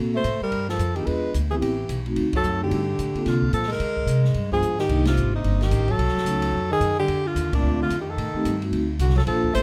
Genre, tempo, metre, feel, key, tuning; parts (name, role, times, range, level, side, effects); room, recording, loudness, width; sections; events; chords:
jazz, small-group swing and bop; 219 BPM; 4/4; swing 60% on 8ths; G minor; A4 = 439 Hz
vibraphone with medium mallets; accompaniment; 0.0-9.6 s; A3 to A4; -30 LUFS; equal
upright bass; bass; 0.0-9.6 s; G1 to D3; -27 LUFS; equal
clear tenor saxophone; second line; 0.1-9.6 s; Bb2 to A3; -31 LUFS; equal
clear alto saxophone; melody; 0.2-9.6 s; D4 to C5; -28 LUFS; equal
open jazz drum kit; drums; 0.2-9.6 s; crash cymbal, hi-hat, kick drum, ride cymbal, snare drum; -35 LUFS; equal
moderate club reverb, RT60 0.8 s; -23 LUFS; mono
0.0-4.9 A section; 4.9-9.6 B section
band accent 2.3, 5.0, 7.5; drum fill 4.6
0.0 Am6; 0.5 Gsus2; 1.1 E7b9; 1.6 Am9; 2.2 D7b9; 2.7 Gm11; 3.8 Bb9; 4.3 G7b9; 4.9 Cm7; 6.0 B9; 7.1 Bbmaj9; 8.2 Am7b5; 8.7 D7